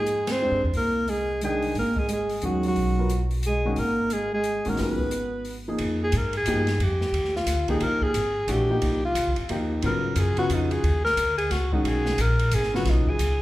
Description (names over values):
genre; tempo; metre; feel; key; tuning
modal jazz; 178 BPM; 3/4; swing 62% on 8ths; unclear; A4 = 438 Hz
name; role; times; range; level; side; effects
breathy alto saxophone; melody; 0.0-13.4 s; Eb4 to C5; -26 LUFS; equal; none
dark bass clarinet; second line; 0.0-5.6 s; Gb3 to C4; -30 LUFS; right 3 dB; none
warm concert grand piano; accompaniment; 0.0-13.2 s; Db3 to G5; -29 LUFS; left 1 dB; none
upright bass; bass; 0.0-13.4 s; Ab1 to Ab2; -27 LUFS; equal; none
open jazz drum kit; drums; 0.1-13.3 s; hi-hat, kick drum, ride cymbal, snare drum; -33 LUFS; equal; none
room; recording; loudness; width
moderate recital hall reverb, RT60 1.5 s; recorded in a church or concert hall; -22 LUFS; side -16 dB against mid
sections
0.0-5.8 A section; 5.8-13.4 B section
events
band accent 0.2; alto saxophone solo 5.8-13.4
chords
0.0 Fm9 (rootless); 1.8 Abm9; 5.8 Fm9; 9.8 Abm9